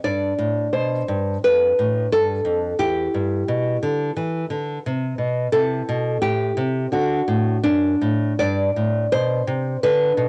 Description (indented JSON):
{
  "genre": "classical, baroque-style dance for nylon-string guitar",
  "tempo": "86 BPM",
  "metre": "4/4",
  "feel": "rubato",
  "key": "C major, G major from 5.5 s",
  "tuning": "A4 = 440 Hz",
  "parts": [
    { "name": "nylon-string guitar", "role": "solo", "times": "0.0-10.3 s", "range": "E2 to D5", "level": "-21 LUFS", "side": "equal", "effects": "cassette tape" }
  ],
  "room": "moderate booth ambience, RT60 0.2 s",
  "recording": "home recording on cassette, nothing above 10.3 kHz",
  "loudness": "-21 LUFS",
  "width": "mono",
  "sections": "0.0-10.3 A section",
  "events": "none",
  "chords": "0.0 G; 1.4 G7/F; 2.8 C/E (rootless); 5.5 Am; 6.9 D; 8.4 G"
}